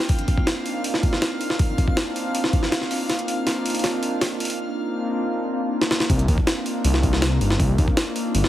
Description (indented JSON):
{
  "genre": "drum and bass, jungle",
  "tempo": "160 BPM",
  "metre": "4/4",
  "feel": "straight",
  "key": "C minor",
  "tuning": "A4 = 440 Hz",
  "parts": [
    { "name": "warbly tape-like pad", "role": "sustained chords", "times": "0.0-8.5 s", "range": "Bb3 to F4", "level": "-26 LUFS", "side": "equal", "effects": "chorus, built-in reverb, vintage 12-bit sampler grit" },
    { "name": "jungle sampler-style drum kit", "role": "drums", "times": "0.0-8.5 s", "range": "hi-hat, kick drum, snare drum", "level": "-22 LUFS", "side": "equal", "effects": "overdrive, high-pass filter on hats, high-pass filter on snare, high-pass filter on kick" },
    { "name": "drifting glass-harmonics texture", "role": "texture", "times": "0.0-4.6 s", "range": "F5 to F6", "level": "-33 LUFS", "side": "left 1 dB", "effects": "chorus, built-in reverb" },
    { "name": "detuned saw bass", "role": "bass", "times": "6.1-8.4 s", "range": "G1 to Eb2", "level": "-20 LUFS", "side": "equal", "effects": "none" }
  ],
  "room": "moderate lush hall reverb, RT60 2.0 s",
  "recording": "heavily compressed radio sound, multiband compression",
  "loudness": "-20 LUFS",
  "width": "side -13 dB against mid",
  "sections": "0.1-6.1 A section; 6.1-8.5 B section",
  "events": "build-up 0.1-6.1; drum fill 3.1-4.6, 5.8; drop 6.1-8.5",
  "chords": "0.1 Cm11",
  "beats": "| 0.10 0.47 0.84 1.22 | 1.59 1.97 2.35 2.72 | 3.10 3.47 3.85 4.22 | 4.59 4.97 5.34 5.72 | 6.09 6.47 6.84 7.22 | 7.59 7.97 8.35"
}